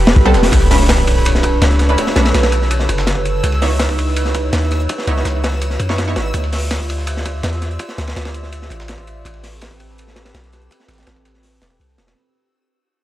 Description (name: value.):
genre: drum and bass, jungle.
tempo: 165 BPM.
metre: 4/4.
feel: straight.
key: unclear.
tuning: A4 = 438 Hz.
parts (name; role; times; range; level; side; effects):
warbly tape-like pad; sustained chords; 0.0-12.1 s; D3 to E5; -23 LUFS; right 2 dB; chorus, built-in reverb.
orchestra-hit-like synth stab; stabs; 0.0-6.1 s; G3 to C#5; -21 LUFS; equal; built-in reverb, dub echo.
long sustained 808-style bass; bass; 0.0-12.1 s; E1 to F#2; -17 LUFS; equal; none.
backwards swelling texture; texture; 0.0-12.2 s; B5 to E6; -30 LUFS; equal; built-in reverb.
crunchy breakbeat drum kit; drums; 0.1-12.2 s; hi-hat, kick drum, ride cymbal, snare drum; -19 LUFS; equal; high-pass filter on kick, high-pass filter on cymbals, high-pass filter on hats, high-pass filter on snare, high-pass filter on room.
dusty soul sampler-style drum kit; drums; 0.2-12.1 s; hi-hat, snare drum; -30 LUFS; right 2 dB; overdrive, high-pass filter on hats, high-pass filter on snare.
impact; sound effects; 0.5-2.0 s; none; -19 LUFS; equal; none.
room: small room reverb.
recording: dry, gritty hardware recording.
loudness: -13 LUFS.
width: side -14 dB against mid.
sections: 0.5-12.2 A section.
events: fade-out 0.5-12.2; impact 0.5-2.0.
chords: 0.0 Am9; 0.5 Bm9; 3.4 C#m9; 6.3 Dm9; 9.3 Am9.